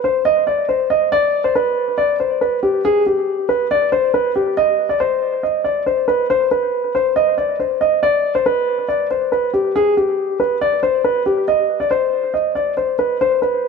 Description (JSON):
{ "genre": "hip hop", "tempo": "139 BPM", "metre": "4/4", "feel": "half-time", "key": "C harmonic minor", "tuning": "A4 = 438 Hz", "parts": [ { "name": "dark concert grand piano", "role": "solo", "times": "0.0-13.7 s", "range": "G4 to Eb5", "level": "-15 LUFS", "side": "equal", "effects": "analog delay" } ], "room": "moderate plate reverb, RT60 2.8 s", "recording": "echo-heavy mix", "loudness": "-15 LUFS", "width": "side -5 dB against mid", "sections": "0.0-4.6 A section; 4.6-13.7 B section", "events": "none", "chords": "none" }